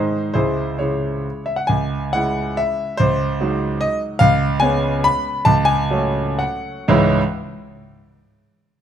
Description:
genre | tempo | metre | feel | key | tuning
classical, romantic triple-time dance for piano with dotted rhythms | 114-156 BPM | 3/4 | rubato | C# minor | A4 = 440 Hz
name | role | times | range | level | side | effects
clear concert grand piano | solo | 0.0-7.2 s | C#2 to B5 | -16 LUFS | equal | none
room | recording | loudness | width
light reverb | close, detailed microphones | -16 LUFS | side -9 dB against mid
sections
0.0-1.7 A section; 1.7-6.9 B section; 6.9-8.2 C section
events
slowing down 3.6-6.9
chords
0.3 C#m; 3.0 G#7/C#; 4.2 C#7; 5.5 F#m/C#; 6.9 C#m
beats
| 0.34 0.79 1.25 | 1.68 2.13 2.57 | 2.98 3.38 3.80 | 4.19 4.61 5.04 | 5.46 5.90 6.39 | 6.88

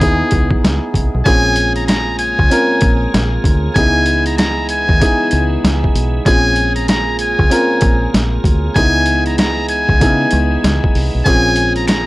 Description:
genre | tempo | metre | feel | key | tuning
hip hop, boom-bap hip-hop | 96 BPM | 4/4 | swing 62% on 16ths | Bb minor | A4 = 440 Hz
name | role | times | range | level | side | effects
trumpet with metal mute | melody | 0.0-12.1 s | Ab4 to Bb5 | -17 LUFS | left 1 dB | high-pass filter, low-pass filter, tape echo
dark grand piano | accompaniment | 0.0-12.1 s | Cb4 to Bb4 | -18 LUFS | equal | cassette tape, high-pass filter, low-pass filter
deep dub fingered electric bass | bass | 0.0-12.1 s | Bb1 to Db3 | -18 LUFS | equal | transformer saturation
boom bap sampler-style drum kit | drums | 0.0-12.1 s | hi-hat, kick drum, snare drum | -15 LUFS | equal | overdrive
tonewheel organ | sustained chords | 1.3-12.1 s | Db3 to F4 | -27 LUFS | equal | overdrive, chorus vibrato, lush chorus, high-pass filter, low-pass filter
finger snaps | percussion | 11.9-12.1 s | none | -26 LUFS | left 2 dB | none
room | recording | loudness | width
little or no reverb | dry, gritty hardware recording, vinyl crackle | -11 LUFS | side -19 dB against mid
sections
0.0-1.3 A section; 1.3-12.1 B section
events
none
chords
0.0 Dbm7; 1.3 Bbm7; 3.8 Dbm7; 6.3 Bbm7; 8.8 Dbm7; 11.3 Bbm7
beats
0.01 0.63 | 1.26 1.88 2.51 3.13 | 3.76 4.38 5.01 5.63 | 6.26 6.88 7.51 8.13 | 8.76 9.38 10.01 10.63 | 11.26 11.88

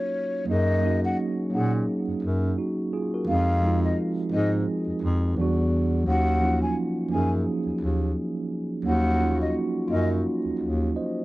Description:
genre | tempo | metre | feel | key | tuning
lo-fi hip hop | 86 BPM | 4/4 | swing 58% on 16ths | Eb dorian | A4 = 440 Hz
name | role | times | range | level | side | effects
breathy mellow concert flute | melody | 0.0-10.1 s | Db5 to Ab5 | -29 LUFS | left 2 dB | low-pass filter
mellow tine electric piano | accompaniment | 0.0-11.2 s | E3 to Eb5 | -25 LUFS | right 2 dB | slow stereo tremolo, cassette tape, low-pass filter
warm bass clarinet | bass | 0.5-10.9 s | Eb2 to Bb2 | -25 LUFS | equal | none
room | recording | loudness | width
small room ambience | cassette tape | -22 LUFS | side -18 dB against mid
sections
0.5-11.2 A section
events
none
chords
0.5 Gb6; 3.3 Fm7; 5.4 Em9; 6.1 Ebm9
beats
| 0.48 1.18 1.88 2.57 | 3.27 3.97 4.67 5.36 | 6.06 6.76 7.46 8.15 | 8.85 9.55 10.25 10.95

